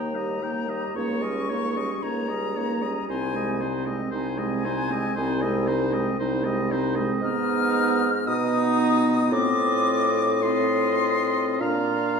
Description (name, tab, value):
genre	classical, slow romantic movement for wind quintet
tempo	49-59 BPM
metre	4/4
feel	rubato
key	unclear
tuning	A4 = 440 Hz
part	silver concert flute	melody	0.0-12.2 s	Ab5 to F6	-28 LUFS	left 5 dB	none
part	clear oboe	second line	0.0-12.2 s	C5 to G5	-31 LUFS	left 1 dB	none
part	clear clarinet	accompaniment	0.0-12.2 s	C4 to G4	-30 LUFS	right 5 dB	none
part	warm French horn	accompaniment	0.0-12.2 s	G3 to D4	-28 LUFS	equal	none
part	warm bassoon	bass	0.0-12.2 s	C2 to Cb3	-27 LUFS	equal	none
room	wet recital hall reverb, RT60 1.4 s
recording	heard from further back in the room, lossy compression artefacts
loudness	-22 LUFS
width	side -5 dB against mid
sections	0.0-12.2 A section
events	none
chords	0.0 Eb; 1.0 Eb7/Db; 3.1 Ab/C; 7.2 Abm; 9.3 F7/A; 11.6 Bb